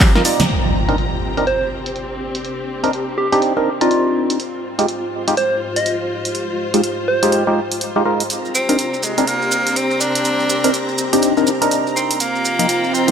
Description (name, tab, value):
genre	deep house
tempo	123 BPM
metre	4/4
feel	swing 61% on 16ths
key	C minor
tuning	A4 = 442 Hz
part	dark analog pad	sustained chords	0.0-13.1 s	Ab3 to Eb5	-29 LUFS	right 3 dB	chorus, phaser, vintage 12-bit sampler grit, sidechain pumping
part	punchy analog drum machine	drums	0.0-13.1 s	handclaps, hi-hat, snare drum	-22 LUFS	right 1 dB	overdrive, low-pass filter on hats, small room ambience, low-pass filter on snare
part	maracas	percussion	0.0-0.5, 8.3-13.1 s	none	-25 LUFS	right 3 dB	none
part	string machine, violins	texture	0.0-0.5, 8.3-13.1 s	Bb5 to D6	-29 LUFS	equal	ensemble chorus
part	warm symphonic string section	texture	0.0-13.1 s	C4 to Bb5	-24 LUFS	left 1 dB	sidechain pumping
part	percussive organ stab	stabs	0.2-13.1 s	F3 to D5	-19 LUFS	equal	chorus, phaser, sidechain pumping, tape echo
part	congas	percussion	0.2-0.5 s	none	-25 LUFS	right 4 dB	none
part	impact	sound effects	0.5-2.4 s	none	-22 LUFS	equal	none
part	soft struck synth lead	melody	1.5-7.6 s	F4 to Eb5	-22 LUFS	equal	chorus, tape echo
part	bright tenor saxophone	melody	8.5-13.1 s	Ab3 to D4	-20 LUFS	equal	tape echo
room	moderate echo chamber reverb, RT60 2.0 s, studio reverb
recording	none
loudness	-15 LUFS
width	side -7 dB against mid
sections	0.5-13.1 A section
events	drum fill 0.0-0.5; band accent 0.4; impact 0.5-2.4; filter sweep on analog synth pad 0.5-13.1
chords	0.5 Cm9; 4.4 Fm9; 8.3 Cm9; 12.2 F7sus4